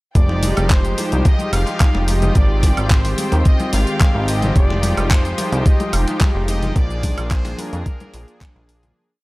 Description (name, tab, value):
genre	nu-disco, nu disco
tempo	109 BPM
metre	4/4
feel	straight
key	F dorian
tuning	A4 = 440 Hz
part	warm analog pad	accompaniment	0.1-8.9 s	Eb3 to Ab4	-24 LUFS	equal	chorus, sidechain pumping
part	clear symphonic violin section	sustained chords	0.1-9.0 s	F4 to G5	-31 LUFS	left 1 dB	sidechain pumping
part	clear trumpet section	melody	0.2-8.7 s	Bb4 to F5	-28 LUFS	equal	none
part	chorused synth bass	bass	0.2-8.9 s	F1 to F2	-19 LUFS	equal	sidechain pumping
part	electronic kick drum	drums	0.2-8.5 s	none	-14 LUFS	equal	none
part	pop drum kit	drums	0.2-8.9 s	handclaps, hi-hat, shaker, woodblock	-25 LUFS	right 1 dB	none
part	congas	percussion	0.3-8.9 s	none	-28 LUFS	left 2 dB	none
room	digital ambience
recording	dry, gritty hardware recording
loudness	-15 LUFS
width	side -21 dB against mid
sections	0.2-9.0 drop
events	drop 0.2-9.0; fade-out 6.0-9.0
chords	0.2 Fm9; 2.4 Abmaj7; 4.6 Fm9; 6.8 Bb7